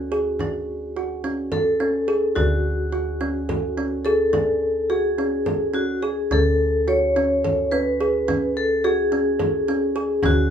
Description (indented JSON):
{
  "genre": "contemporary instrumental, chamber music in an uneven meter",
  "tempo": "213 BPM (eighths)",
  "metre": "7/8",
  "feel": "straight",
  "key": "D lydian",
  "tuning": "A4 = 440 Hz",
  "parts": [
    { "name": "vibraphone with medium mallets", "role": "second line", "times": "0.0-10.5 s", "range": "F#4 to C#5", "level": "-22 LUFS", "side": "left 2 dB", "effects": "none" },
    { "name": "metallic FM bass", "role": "bass", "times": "0.0-10.5 s", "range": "D2", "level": "-28 LUFS", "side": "equal", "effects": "none" },
    { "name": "kalimba", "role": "arpeggios", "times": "0.1-10.5 s", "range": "C#4 to A4", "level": "-24 LUFS", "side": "right 3 dB", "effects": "none" },
    { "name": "frame drum", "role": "percussion", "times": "0.4-10.5 s", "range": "none", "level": "-30 LUFS", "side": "left 2 dB", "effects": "none" }
  ],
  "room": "moderate studio ambience, RT60 0.4 s",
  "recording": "heard from further back in the room",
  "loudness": "-19 LUFS",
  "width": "side -8 dB against mid",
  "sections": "0.0-10.5 A section",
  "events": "none",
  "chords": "0.0 Dmaj7"
}